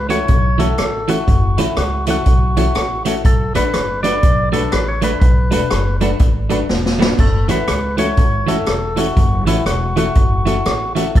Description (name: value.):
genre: ska.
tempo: 122 BPM.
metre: 4/4.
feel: swing 61% on 8ths.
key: F# minor.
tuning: A4 = 443 Hz.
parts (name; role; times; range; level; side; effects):
percussive tonewheel organ; melody; 0.0-11.2 s; E4 to D5; -21 LUFS; equal; overdrive.
upright bass; bass; 0.0-11.2 s; E1 to C#2; -20 LUFS; equal; none.
clean electric guitar; accompaniment; 0.1-11.1 s; E3 to F#4; -22 LUFS; right 4 dB; warbly pitch drift, tape echo.
clear upright piano; stabs; 0.1-11.1 s; D4 to B4; -24 LUFS; left 5 dB; none.
swinging big-band drum kit; drums; 0.1-11.2 s; hi-hat, kick drum, rim click, snare drum, splash cymbal; -17 LUFS; equal; none.
room: moderate large studio reverb, RT60 1.3 s.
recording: band playing live in one room.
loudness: -13 LUFS.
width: side -12 dB against mid.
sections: 0.0-11.2 A section.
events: drum fill 6.7-7.2.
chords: 0.0 F#m7; 3.2 Bm7; 7.2 F#m7.